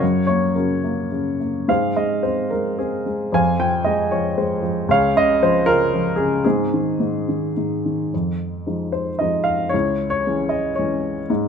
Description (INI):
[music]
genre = classical, lyrical solo piano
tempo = 102-118 BPM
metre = 3/4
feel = rubato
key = Ab major, F minor from 8.1 s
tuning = A4 = 440 Hz
[part]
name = dark upright piano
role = solo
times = 0.0-11.5 s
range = Db2 to Ab5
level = -18 LUFS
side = equal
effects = none
[sound]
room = moderate recital hall reverb, RT60 1.5 s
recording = close, detailed microphones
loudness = -18 LUFS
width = side -7 dB against mid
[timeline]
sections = 0.0-8.1 A section; 8.1-11.5 B section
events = none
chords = 0.0 Gb; 1.7 Ab; 3.3 Fm; 4.9 Db; 6.4 Ab; 8.1 Fm7; 9.7 Dbm